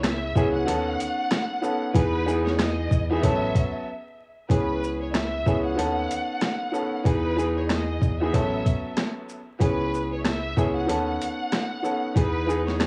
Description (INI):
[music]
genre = hip hop, boom-bap hip-hop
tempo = 94 BPM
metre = 4/4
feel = swing 60% on 16ths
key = C# minor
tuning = A4 = 437 Hz
[part]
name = rich studio violin section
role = melody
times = 0.0-12.9 s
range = B4 to F#5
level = -33 LUFS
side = equal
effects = high-pass filter, low-pass filter, analog delay
[part]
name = warm upright piano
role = accompaniment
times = 0.0-12.9 s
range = D#3 to A4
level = -29 LUFS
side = equal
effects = high-pass filter, low-pass filter, cassette tape
[part]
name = deep dub fingered electric bass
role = bass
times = 0.0-12.9 s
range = A1 to E2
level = -32 LUFS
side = equal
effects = none
[part]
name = boom bap sampler-style drum kit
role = drums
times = 0.0-12.9 s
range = hi-hat, kick drum, rim click, shaker, snare drum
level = -27 LUFS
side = equal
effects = none
[sound]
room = digital ambience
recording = home recording on cassette, vinyl crackle, small room ambience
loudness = -25 LUFS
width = mono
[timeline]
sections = 0.0-4.5 A section; 4.5-12.9 B section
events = break 3.9-4.5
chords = 0.0 C#m7; 0.7 B9/D#; 1.9 Emaj7; 3.2 A69; 4.5 C#m7; 5.8 B9/D#; 7.1 Emaj7; 8.3 A69; 9.6 C#m7; 10.9 B9/D#; 12.2 Emaj7